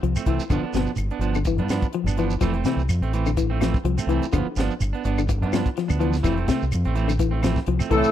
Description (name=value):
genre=afrobeat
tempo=126 BPM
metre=4/4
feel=swing 55% on 16ths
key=G mixolydian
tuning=A4 = 440 Hz
part: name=electric guitar at the edge of break-up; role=arpeggios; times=0.0-8.0 s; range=B2 to F3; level=-27 LUFS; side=left 9 dB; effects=spring reverb
part: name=deep dub fingered electric bass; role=bass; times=0.0-8.1 s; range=F1 to G2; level=-24 LUFS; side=equal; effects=none
part: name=tight funk drum kit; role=drums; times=0.0-8.1 s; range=hi-hat, kick drum, snare drum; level=-25 LUFS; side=equal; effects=none
part: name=clean electric guitar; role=stabs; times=0.2-8.1 s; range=E3 to D4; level=-28 LUFS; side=right 8 dB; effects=none
part: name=claves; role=percussion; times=0.2-7.9 s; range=none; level=-39 LUFS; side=left 9 dB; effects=none
part: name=shekere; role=percussion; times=0.2-8.1 s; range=none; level=-31 LUFS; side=right 3 dB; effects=none
part: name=warm horn section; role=melody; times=7.9-8.1 s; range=A4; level=-19 LUFS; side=left 4 dB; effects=none
part: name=clear trombone section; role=second line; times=7.9-8.1 s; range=A2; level=-24 LUFS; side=right 4 dB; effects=slapback echo
part: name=raspy tenor saxophone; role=second line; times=8.0-8.1 s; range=A3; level=-25 LUFS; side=right 5 dB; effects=none
room=small room ambience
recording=dry, close 1970s-style studio recording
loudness=-20 LUFS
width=side -11 dB against mid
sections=0.0-8.1 A section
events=none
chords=0.0 Fmaj7; 0.5 G7; 2.4 Fmaj7; 4.3 G7; 6.2 Fmaj7